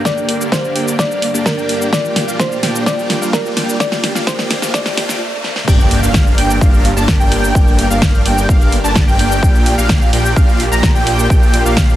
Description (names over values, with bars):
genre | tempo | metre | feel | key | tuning
EDM, festival progressive house | 128 BPM | 4/4 | straight | unclear | A4 = 438 Hz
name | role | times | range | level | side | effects
thumb-piano-like synth pluck | melody | 0.0-5.2 s | Bb4 to D5 | -22 LUFS | left 1 dB | chorus, tape echo
supersaw pad | sustained chords | 0.0-12.0 s | G2 to Bb4 | -25 LUFS | equal | phaser, sidechain pumping
big supersaw lead | riff | 0.0-12.0 s | Bb3 to Bb5 | -19 LUFS | equal | sidechain pumping, low-pass filter, tape echo
riser and impact | sound effects | 1.2-7.6 s | none | -28 LUFS | equal | none
electronic kick drum | drums | 0.1-11.9 s | none | -13 LUFS | equal | high-pass filter on kick
pop drum kit | drums | 0.1-12.0 s | cabasa, crash cymbal, hi-hat, snare drum | -19 LUFS | equal | none
wide unison lead | arpeggios | 5.7-12.0 s | F5 to Bb5 | -20 LUFS | equal | ensemble chorus, cassette tape, sidechain pumping, tape echo
wide detuned saw bass | bass | 5.7-12.0 s | G1 to Bb1 | -17 LUFS | equal | chorus, sidechain pumping
room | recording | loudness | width
light reverb, digital ambience | high-pass filter | -11 LUFS | side -13 dB against mid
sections
0.0-5.7 A section; 5.7-12.0 B section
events
build-up 0.0-5.7; drum fill 0.0-5.2, 5.4; filter sweep on supersaw synth 0.0-5.7; filter sweep 0.0-5.7; stop 5.2-5.7; drop 5.7-12.0; impact 5.7-7.6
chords
0.0 Gm; 1.9 Bb6; 5.7 Gm; 9.4 Bb6